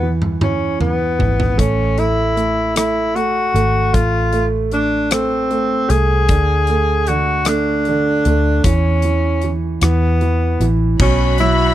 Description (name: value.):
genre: six-eight pop ballad.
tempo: 51 BPM (dotted quarters).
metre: 6/8.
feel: straight.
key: A major.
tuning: A4 = 440 Hz.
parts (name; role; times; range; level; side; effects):
warm tenor saxophone; melody; 0.0-11.7 s; B3 to G#4; -18 LUFS; left 1 dB; none.
clear concert grand piano; accompaniment; 0.0-11.7 s; B2 to A3; -21 LUFS; right 5 dB; none.
vintage muted fingered electric bass; bass; 0.0-11.7 s; G#1 to E2; -18 LUFS; left 1 dB; none.
huge arena drum kit; drums; 0.2-11.6 s; crash cymbal, hi-hat, kick drum, rim click, toms; -20 LUFS; equal; none.
warm studio string section; sustained chords; 11.0-11.7 s; F#4 to B5; -22 LUFS; left 4 dB; none.
room: small room reverb.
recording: dry, close 1970s-style studio recording.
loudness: -14 LUFS.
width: side -13 dB against mid.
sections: 0.0-11.0 A section.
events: drum fill 0.0-1.6.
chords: 0.0 E; 1.6 A5; 3.9 Am; 6.3 D5; 8.6 C#m/E; 9.8 E5; 11.0 Bsus2.